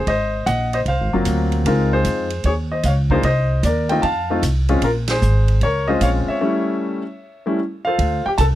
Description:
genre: jazz piano trio.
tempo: 152 BPM.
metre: 4/4.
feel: swing 66% on 8ths.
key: unclear.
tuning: A4 = 442 Hz.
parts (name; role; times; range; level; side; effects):
warm baby grand piano; melody; 0.0-8.5 s; Gb3 to A5; -19 LUFS; left 1 dB; none.
upright bass; bass; 0.0-8.6 s; Gb1 to F2; -19 LUFS; equal; none.
vintage drum kit; drums; 0.1-8.5 s; hi-hat, kick drum, ride cymbal, snare drum; -30 LUFS; right 2 dB; none.
room: little or no reverb.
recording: close, detailed microphones.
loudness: -16 LUFS.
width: side -14 dB against mid.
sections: 0.0-8.0 A section.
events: band accent 5.0; break 6.4-8.0.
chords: 0.1 Ab13; 1.7 Dbmaj9; 3.2 Cm7; 4.0 F; 4.8 Bbm9; 6.4 A7; 8.0 Dm7.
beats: | 0.07 0.46 0.86 1.26 | 1.65 2.05 2.44 2.84 | 3.24 3.63 4.03 4.43 | 4.82 5.22 5.61 6.01 | 6.41 6.80 7.20 7.59 | 7.99 8.38.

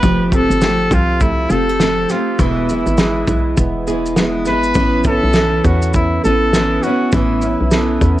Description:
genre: acoustic pop.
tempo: 102 BPM.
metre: 4/4.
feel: swing 60% on 16ths.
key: A major.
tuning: A4 = 440 Hz.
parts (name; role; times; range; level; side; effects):
clear trumpet; melody; 0.0-8.2 s; E4 to B4; -19 LUFS; left 1 dB; cassette tape, tape echo.
picked steel-string acoustic guitar; accompaniment; 0.0-8.2 s; E2 to G4; -18 LUFS; equal; double-tracked left and right.
flamenco guitar; arpeggios; 0.0-8.2 s; E3 to A4; -23 LUFS; right 4 dB; tape echo.
hollow knocking FM bass; bass; 0.0-8.2 s; E1 to E2; -19 LUFS; equal; none.
loose indie drum kit; drums; 0.0-8.2 s; kick drum, shaker, snare drum; -18 LUFS; equal; cassette tape.
room: little or no reverb.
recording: home recording on cassette.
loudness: -13 LUFS.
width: side -14 dB against mid.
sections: 0.0-8.2 A section.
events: none.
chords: 0.0 Fadd9; 2.4 E; 4.8 Aadd9.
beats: | 0.03 0.62 1.21 1.80 | 2.39 2.99 3.58 4.17 | 4.76 5.35 5.94 6.53 | 7.12 7.72.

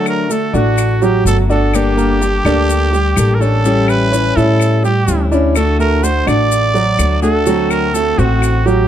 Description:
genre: latin, Cuban son and guajira.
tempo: 126 BPM.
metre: 4/4.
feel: straight.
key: unclear.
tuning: A4 = 440 Hz.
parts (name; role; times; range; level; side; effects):
growling trumpet; melody; 0.0-8.9 s; F#4 to D5; -18 LUFS; right 2 dB; none.
picked steel-string acoustic guitar; accompaniment; 0.0-8.7 s; D3 to A4; -18 LUFS; left 4 dB; none.
warm baby grand piano; arpeggios; 0.0-8.9 s; F#3 to G5; -18 LUFS; right 5 dB; none.
claves; percussion; 0.1-8.7 s; none; -25 LUFS; left 6 dB; none.
maracas; percussion; 0.1-8.9 s; none; -27 LUFS; left 8 dB; none.
upright bass; bass; 0.5-8.9 s; G1 to A2; -15 LUFS; equal; none.
room: light reverb.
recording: dark, warm production.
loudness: -11 LUFS.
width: side -10 dB against mid.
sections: 0.0-8.9 A section.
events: none.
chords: 0.0 D; 1.7 Gmadd9; 3.6 A7; 5.6 D; 7.5 D7.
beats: 0.30 0.78 1.26 | 1.74 2.21 2.69 3.17 | 3.65 4.12 4.60 5.08 | 5.56 6.03 6.51 6.99 | 7.46 7.94 8.42.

